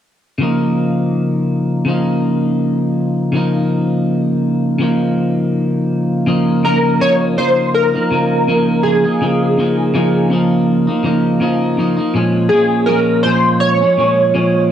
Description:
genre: indie pop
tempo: 82 BPM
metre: 4/4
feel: swing 55% on 16ths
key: Db major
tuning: A4 = 440 Hz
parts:
  - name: clean electric guitar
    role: accompaniment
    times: 0.4-14.7 s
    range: Bb2 to Eb4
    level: -14 LUFS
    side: equal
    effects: wide subtle chorus, vibrato effect
  - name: chorused retro synth keys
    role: melody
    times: 6.6-14.7 s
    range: Ab4 to Db5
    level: -14 LUFS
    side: equal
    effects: ensemble chorus, slapback echo
room: wet small room reverb, RT60 0.5 s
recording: dark, warm production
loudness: -13 LUFS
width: side -10 dB against mid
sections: 0.4-6.3 A section; 6.3-14.7 B section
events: none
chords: 0.4 Db69; 12.1 Bbm7

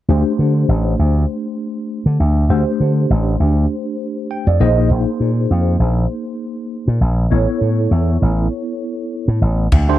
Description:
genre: electric jazz fusion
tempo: 100 BPM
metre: 4/4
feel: swing 55% on 16ths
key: unclear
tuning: A4 = 440 Hz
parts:
  - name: bright tine electric piano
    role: accompaniment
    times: 0.1-10.0 s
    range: A3 to G5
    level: -20 LUFS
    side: equal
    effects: medium stereo tremolo, phaser
  - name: slap bass with an envelope filter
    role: bass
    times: 0.1-10.0 s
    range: A1 to D3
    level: -14 LUFS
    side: equal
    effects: none
  - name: crisp fusion drum kit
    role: drums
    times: 9.7-9.9 s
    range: crash cymbal, kick drum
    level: -15 LUFS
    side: equal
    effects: none
room: little or no reverb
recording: none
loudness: -14 LUFS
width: side -13 dB against mid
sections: 0.1-9.7 A section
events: tine electric piano fill 4.0-4.9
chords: 0.1 D7sus4; 4.6 Bb9sus4; 7.3 Aadd9

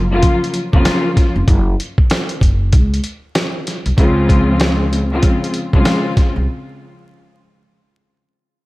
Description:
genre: hip hop, boom-bap hip-hop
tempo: 96 BPM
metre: 4/4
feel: swing 61% on 16ths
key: Db major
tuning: A4 = 440 Hz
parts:
  - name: upright bass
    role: bass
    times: 0.0-6.5 s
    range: F1 to Db2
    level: -17 LUFS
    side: equal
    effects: none
  - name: dark studio string section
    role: accompaniment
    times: 0.1-6.3 s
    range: Db3 to F4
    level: -17 LUFS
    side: left 1 dB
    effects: cassette tape, high-pass filter, low-pass filter
  - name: dusty soul sampler-style drum kit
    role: drums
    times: 0.2-6.3 s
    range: hi-hat, kick drum, snare drum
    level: -15 LUFS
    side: equal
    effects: none
room: studio reverb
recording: vinyl crackle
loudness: -13 LUFS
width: side -20 dB against mid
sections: 0.0-4.0 A section; 4.0-6.5 B section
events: none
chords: 0.0 Gbmaj7; 4.0 Dbmaj7

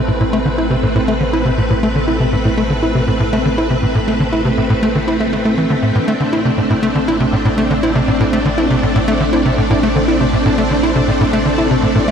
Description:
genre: ambient, sequencer-driven space music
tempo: 120 BPM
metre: 4/4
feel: straight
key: A minor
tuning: A4 = 439 Hz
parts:
  - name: string machine, full ensemble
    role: sustained chords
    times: 0.0-12.1 s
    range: A3 to B4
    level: -16 LUFS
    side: equal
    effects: ensemble chorus
  - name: wide unison pluck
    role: arpeggios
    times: 0.0-12.1 s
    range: A4 to B5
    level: -30 LUFS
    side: left 1 dB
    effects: none
  - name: warm sub bass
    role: bass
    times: 0.0-12.1 s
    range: A1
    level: -24 LUFS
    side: equal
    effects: none
  - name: tight sequencer bass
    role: riff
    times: 0.1-12.1 s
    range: A2 to E4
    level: -16 LUFS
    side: equal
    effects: tape echo
room: wet huge ambient reverb, RT60 8.2 s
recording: dreamy mix soaked in reverb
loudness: -12 LUFS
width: side -7 dB against mid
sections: 0.0-12.1 A section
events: none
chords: 0.0 Amadd9

